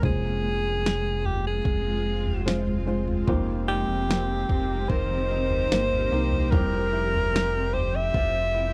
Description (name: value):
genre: pop ballad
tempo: 74 BPM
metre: 4/4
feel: straight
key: unclear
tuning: A4 = 440 Hz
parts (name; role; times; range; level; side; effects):
- clear alto saxophone; melody; 0.0-8.7 s; G4 to E5; -30 LUFS; equal; slapback echo
- felt-muted upright piano; accompaniment; 0.0-8.7 s; C3 to C5; -35 LUFS; equal; none
- shimmering ambient pad; sustained chords; 0.0-8.7 s; F3 to Bb4; -36 LUFS; equal; chorus, built-in reverb
- sub bass with octave; bass; 0.0-8.7 s; F1 to C2; -31 LUFS; equal; none
- smooth R&B drum kit; drums; 0.0-8.3 s; kick drum, snare drum, toms; -30 LUFS; equal; none
- flamenco guitar; arpeggios; 3.3-8.7 s; F2 to G4; -38 LUFS; equal; none
room: little or no reverb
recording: dry, close 1970s-style studio recording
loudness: -25 LUFS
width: mono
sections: 0.0-8.7 A section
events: none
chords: 0.0 Fm; 3.3 Cm7/F; 6.5 C/F